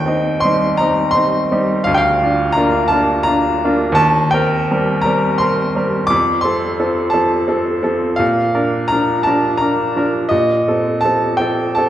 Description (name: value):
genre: classical, romantic nocturne for solo piano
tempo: 56 BPM (dotted quarters)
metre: 12/8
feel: rubato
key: Bb major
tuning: A4 = 436 Hz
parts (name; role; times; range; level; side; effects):
- clear baby grand piano; solo; 0.0-11.9 s; D2 to D6; -13 LUFS; equal; none
room: wet recital hall reverb, RT60 1.6 s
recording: recorded in a church or concert hall, nothing above 10.9 kHz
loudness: -13 LUFS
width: side -12 dB against mid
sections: 0.0-11.9 A section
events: none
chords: 0.0 Cm/Eb; 1.9 Bb/D; 4.0 Cm7/Eb; 6.1 F; 8.2 Bb; 10.3 F7/Bb